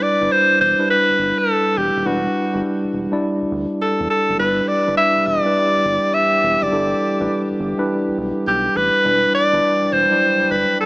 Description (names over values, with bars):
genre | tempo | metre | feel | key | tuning
R&B | 103 BPM | 4/4 | swing 67% on 16ths | unclear | A4 = 440 Hz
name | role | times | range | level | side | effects
clear alto saxophone | melody | 0.0-10.9 s | F#4 to E5 | -16 LUFS | equal | none
mellow tine electric piano | accompaniment | 0.0-10.9 s | F#3 to D5 | -21 LUFS | equal | medium stereo tremolo
round analog bass | bass | 0.2-10.7 s | Eb1 to E2 | -29 LUFS | equal | none
clear brass ensemble | sustained chords | 4.4-10.9 s | E3 to G4 | -29 LUFS | right 1 dB | none
room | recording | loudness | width
light reverb, small room reverb | small speaker sound | -15 LUFS | side -25 dB against mid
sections
0.0-10.9 A section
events
none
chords
0.0 Em7; 4.4 G6; 9.0 Em7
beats
0.31 0.89 1.47 | 2.06 2.64 3.22 3.80 | 4.38 4.97 5.55 6.13 | 6.71 7.30 7.88 8.46 | 9.05 9.63 10.21 10.79